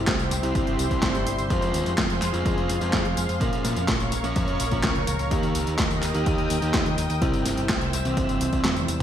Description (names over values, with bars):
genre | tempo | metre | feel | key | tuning
italo disco | 126 BPM | 4/4 | straight | unclear | A4 = 440 Hz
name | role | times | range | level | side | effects
lush unison pad | sustained chords | 0.0-9.0 s | G4 to E6 | -30 LUFS | right 1 dB | chorus
overdriven tine electric piano | stabs | 0.0-9.0 s | Bb2 to Eb5 | -32 LUFS | left 4 dB | vintage 12-bit sampler grit
deep dub picked electric bass | bass | 0.0-9.0 s | G1 to Bb2 | -28 LUFS | equal | none
dusty soul sampler-style drum kit | drums | 0.1-9.0 s | handclaps, hi-hat, snare drum, tambourine, toms | -28 LUFS | equal | overdrive, studio reverb, gated reverb
electronic kick drum | drums | 0.1-8.6 s | none | -29 LUFS | equal | overdrive, studio reverb
fuzz lead guitar | melody | 0.4-8.7 s | E3 to Bb4 | -29 LUFS | equal | distortion, ping-pong delay
room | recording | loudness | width
light reverb, digital ambience | bright 1980s-style digital production | -22 LUFS | side -10 dB against mid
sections
0.0-9.0 A section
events
kick drops out 8.6-9.0; drum fill 8.6-9.0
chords
0.0 C; 1.5 Fm; 3.4 Bbm; 5.3 Eb; 7.2 C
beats
0.07 0.55 1.03 | 1.50 1.98 2.46 2.93 | 3.41 3.88 4.36 4.84 | 5.31 5.79 6.27 6.74 | 7.22 7.69 8.17 8.65